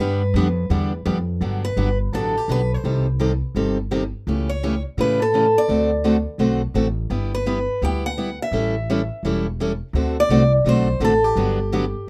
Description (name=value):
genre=acoustic string swing (jazz manouche)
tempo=169 BPM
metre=4/4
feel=swing 61% on 8ths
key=G major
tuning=A4 = 442 Hz
part: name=picked steel-string acoustic guitar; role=melody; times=0.0-12.1 s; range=G4 to G5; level=-24 LUFS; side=equal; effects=none
part: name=picked steel-string acoustic guitar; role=accompaniment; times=0.0-11.8 s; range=C3 to A4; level=-24 LUFS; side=equal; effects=none
part: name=upright bass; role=bass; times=0.0-11.9 s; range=E1 to A2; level=-25 LUFS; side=equal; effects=none
room=light reverb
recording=rough home demo mix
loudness=-21 LUFS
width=mono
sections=0.0-1.4 A section; 1.4-12.1 B section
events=none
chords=0.0 G; 1.4 Gmaj7; 2.8 Cm6; 4.3 A7/C#; 5.7 D7; 7.1 G6; 8.5 A7; 9.9 D7; 11.4 Gmaj7